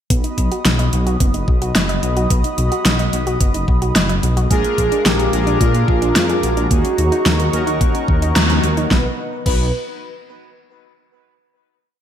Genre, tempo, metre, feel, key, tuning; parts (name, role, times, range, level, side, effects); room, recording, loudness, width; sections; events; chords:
synthwave; 109 BPM; 4/4; straight; B major; A4 = 439 Hz
chorused pulse-width pad; sustained chords; 0.1-9.2 s; G#3 to D#6; -25 LUFS; right 1 dB; sidechain pumping
soft round pluck; arpeggios; 0.1-9.7 s; G#3 to D#5; -26 LUFS; right 2 dB; chorus, ping-pong delay
dark detuned saw bass; bass; 0.1-9.7 s; F#1 to A#2; -19 LUFS; equal
electronic kick drum; drums; 0.1-9.6 s; -17 LUFS; equal
pop drum kit; drums; 0.1-9.6 s; crash cymbal, hi-hat, snare drum; -20 LUFS; equal; overdrive, gated reverb
warm velvety synth lead; melody; 4.5-9.7 s; E#4 to B4; -22 LUFS; right 1 dB; chorus, ping-pong delay
FM electric piano with soft pad layer; second line; 4.5-9.7 s; E#4 to B4; -31 LUFS; equal
analog synth brass; stabs; 4.5-9.7 s; B3 to B4; -24 LUFS; left 3 dB; chorus, ping-pong delay
moderate lush hall reverb, RT60 1.9 s, digital ambience; bright 1980s-style digital production; -14 LUFS; side -9 dB against mid
0.1-8.9 verse; 8.9-11.1 final chord
band accent 8.4
0.1 B; 4.5 A#7; 6.7 D#m7; 8.9 B